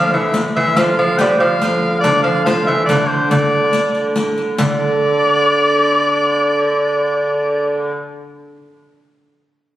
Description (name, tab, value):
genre	medieval dance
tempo	95 BPM (dotted quarters)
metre	6/8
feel	straight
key	D minor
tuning	A4 = 436 Hz
part	clear shawm	melody	0.0-7.9 s	C5 to G5	-16 LUFS	left 1 dB	none
part	lute	second line	0.0-8.6 s	D3 to G3	-18 LUFS	right 2 dB	none
part	warm hurdy-gurdy	drone	0.0-7.9 s	D3	-21 LUFS	right 1 dB	none
part	riq	percussion	0.3-4.8 s	none	-22 LUFS	left 2 dB	none
room	wet recital hall reverb, RT60 1.6 s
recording	recorded on a phone in the room, club reverb, compression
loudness	-13 LUFS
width	side -13 dB against mid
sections	0.0-4.6 A section; 4.6-7.1 B section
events	none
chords	none